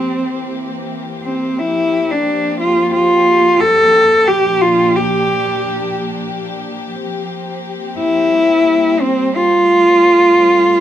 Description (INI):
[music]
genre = acoustic folk-pop ballad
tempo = free time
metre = none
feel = none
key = unclear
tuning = A4 = 440 Hz
[part]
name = dark cello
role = melody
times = 0.0-10.8 s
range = C4 to A4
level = -11 LUFS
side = equal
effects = none
[part]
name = warm studio string section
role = sustained chords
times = 0.0-10.8 s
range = Bb2 to G4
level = -22 LUFS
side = left 1 dB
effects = none
[sound]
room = light reverb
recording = minimal, uncompressed stereo recording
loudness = -11 LUFS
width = side -11 dB against mid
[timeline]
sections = 0.0-10.8 A section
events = none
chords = 0.2 C7; 1.6 C7sus4; 4.3 Gm7/Bb; 7.0 C7sus4; 8.3 C7; 9.7 F